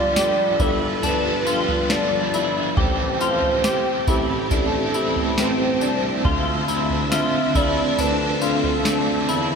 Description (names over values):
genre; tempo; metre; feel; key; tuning
dream pop; 69 BPM; 4/4; straight; A minor; A4 = 435 Hz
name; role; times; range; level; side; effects
warbly nostalgic lead; melody; 0.0-9.3 s; G4 to E5; -24 LUFS; equal; chorus, ping-pong delay
overdriven electric guitar; accompaniment; 0.0-9.6 s; A2 to B4; -27 LUFS; right 3 dB; tremolo, lush chorus
phased string machine; sustained chords; 0.0-9.6 s; D3 to E5; -25 LUFS; right 1 dB; ensemble chorus, phaser
semi-hollow electric guitar; arpeggios; 0.0-9.6 s; C4 to G4; -24 LUFS; left 3 dB; ensemble chorus, ping-pong delay
warm tuba; bass; 0.0-9.6 s; G1 to E2; -29 LUFS; equal; none
vibraphone with soft mallets; texture; 0.0-6.5 s; F4 to B5; -36 LUFS; left 3 dB; none
soft vintage rhythm box; drums; 0.2-9.5 s; kick drum, snare drum, tambourine, toms; -25 LUFS; right 1 dB; overdrive
room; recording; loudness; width
wet concert hall reverb, RT60 2.0 s; none; -18 LUFS; side -6 dB against mid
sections
0.0-9.6 A section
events
none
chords
0.0 G7; 2.8 Am7; 6.2 Dm7